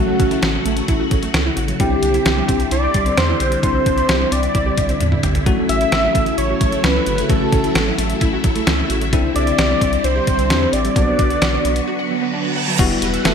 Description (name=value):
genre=synth-pop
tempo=131 BPM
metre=4/4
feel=straight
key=unclear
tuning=A4 = 440 Hz
part: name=wide unison lead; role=melody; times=0.0-13.3 s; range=A3 to E5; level=-21 LUFS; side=equal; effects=digital delay
part: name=bell-like tine electric piano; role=accompaniment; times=0.0-13.3 s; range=G3 to G4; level=-24 LUFS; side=left 6 dB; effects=lush chorus
part: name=phased string machine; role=sustained chords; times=0.0-13.3 s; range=C#3 to F#5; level=-23 LUFS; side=equal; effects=ensemble chorus, phaser
part: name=wide unison pluck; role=arpeggios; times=0.0-13.3 s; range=F#3 to F#5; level=-26 LUFS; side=right 4 dB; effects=lush chorus, digital delay
part: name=round analog bass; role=bass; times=0.0-13.3 s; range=E1 to E2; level=-22 LUFS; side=equal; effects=none
part: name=detuned 8-bit digital drum machine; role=drums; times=0.2-13.3 s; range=crash cymbal, hi-hat, kick drum, snare drum, toms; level=-20 LUFS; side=equal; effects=none
part: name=reverse cymbal and impact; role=sound effects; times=12.2-13.3 s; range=none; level=-24 LUFS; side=right 5 dB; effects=none
room=moderate plate reverb, RT60 1.5 s, digital ambience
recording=bright 1980s-style digital production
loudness=-15 LUFS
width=side -7 dB against mid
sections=0.0-12.8 A section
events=drum fill 5.0-5.5; break 11.9-12.8; reverse cymbal 12.2-12.8; impact 12.8-13.3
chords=0.0 A6; 1.8 Cadd9; 5.5 A6; 9.1 Cadd9; 11.0 Bm; 12.8 Emadd9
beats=0.43 0.88 1.34 | 1.80 2.26 2.72 3.17 | 3.63 4.09 4.55 5.01 | 5.46 5.92 6.38 6.84 | 7.30 7.75 8.21 8.67 | 9.13 9.59 10.04 10.50 | 10.96 11.42 11.88 12.33 | 12.79 13.25